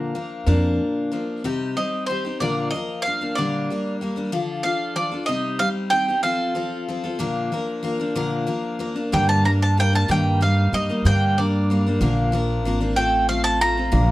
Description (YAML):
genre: acoustic folk duo or small band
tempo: 62 BPM (dotted quarters)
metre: 6/8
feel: straight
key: unclear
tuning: A4 = 440 Hz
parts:
  - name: bowl-back mandolin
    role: melody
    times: 0.0-14.1 s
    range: C5 to Bb5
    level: -22 LUFS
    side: right 2 dB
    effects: none
  - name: picked steel-string acoustic guitar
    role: accompaniment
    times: 0.0-14.1 s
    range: G2 to Bb4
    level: -24 LUFS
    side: left 2 dB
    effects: none
  - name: upright bass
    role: bass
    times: 0.5-0.8, 9.1-14.1 s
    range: Ab1 to G2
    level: -20 LUFS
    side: equal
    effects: none
room: moderate studio reverb, RT60 0.6 s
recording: none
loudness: -19 LUFS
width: side -17 dB against mid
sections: 0.0-1.4 A section; 1.4-14.1 B section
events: mandolin solo 1.4-14.1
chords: 0.0 Bb; 1.4 Cm; 2.4 Bb; 3.4 Gm/Bb; 4.3 Dm; 5.3 Cm; 6.2 F; 7.2 Bb; 9.1 Gm; 10.1 Eb/G; 11.0 Gm; 12.0 Bb; 13.0 F/A